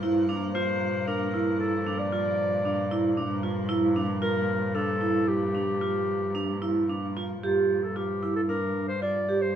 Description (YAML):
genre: contemporary instrumental, chamber music in an uneven meter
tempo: 114 BPM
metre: 7/4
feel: straight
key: G dorian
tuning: A4 = 440 Hz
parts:
  - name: icy glass pad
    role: sustained chords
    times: 0.0-7.4 s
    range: Bb2 to Bb3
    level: -37 LUFS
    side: left 2 dB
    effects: chorus, built-in reverb
  - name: vibraphone with hard mallets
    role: arpeggios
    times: 0.0-9.5 s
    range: D4 to G4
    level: -28 LUFS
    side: right 2 dB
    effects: none
  - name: warm cello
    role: bass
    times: 0.0-9.6 s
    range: G2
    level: -31 LUFS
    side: right 1 dB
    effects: none
  - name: warm clarinet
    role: melody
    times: 0.5-9.6 s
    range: F4 to D5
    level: -29 LUFS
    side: left 2 dB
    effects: none
room: wet studio reverb, RT60 0.8 s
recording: heard from further back in the room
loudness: -24 LUFS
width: side -9 dB against mid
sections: 0.0-7.4 A section; 7.4-9.6 B section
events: none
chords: 0.0 Gm7; 7.4 G5